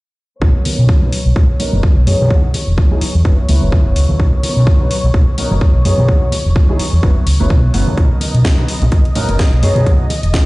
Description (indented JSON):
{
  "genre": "filtered disco house",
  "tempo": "127 BPM",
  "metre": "4/4",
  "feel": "swing 56% on 16ths",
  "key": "B major",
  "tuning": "A4 = 440 Hz",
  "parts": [
    { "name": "clear grand piano", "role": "accompaniment", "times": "0.4-10.0 s", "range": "F#3 to B4", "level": "-21 LUFS", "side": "equal", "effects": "phaser, sidechain pumping, low-pass filter" },
    { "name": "rich studio string section", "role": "sustained chords", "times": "0.4-10.5 s", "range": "C#5 to D#6", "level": "-27 LUFS", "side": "left 2 dB", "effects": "sidechain pumping, low-pass filter" },
    { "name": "fingered electric bass", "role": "bass", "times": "0.4-10.3 s", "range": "E1 to B2", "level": "-13 LUFS", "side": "equal", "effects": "sidechain pumping, low-pass filter" },
    { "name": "electronic kick drum", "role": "drums", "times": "0.4-10.4 s", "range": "none", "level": "-12 LUFS", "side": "equal", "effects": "none" },
    { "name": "tambourine and congas", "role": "percussion", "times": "0.4-10.4 s", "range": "none", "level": "-24 LUFS", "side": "right 1 dB", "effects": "sidechain pumping on perc, low-pass filter on perc" },
    { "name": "house drum kit", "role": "drums", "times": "0.7-10.4 s", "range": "hi-hat, snare drum", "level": "-24 LUFS", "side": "left 1 dB", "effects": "sidechain pumping on hats" }
  ],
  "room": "small room ambience",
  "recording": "played on a big sound system in a bare room, stone room reverb, nothing above 10.7 kHz",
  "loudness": "-11 LUFS",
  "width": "side -21 dB against mid",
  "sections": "0.4-10.5 A section",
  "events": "filter sweep 0.4-10.5",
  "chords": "0.4 Bmaj9; 2.3 Emaj9; 3.3 F#7sus4; 4.2 Bmaj9; 6.1 Emaj9; 7.0 F#7sus4; 8.0 Bmaj9; 9.9 Emaj7sus2"
}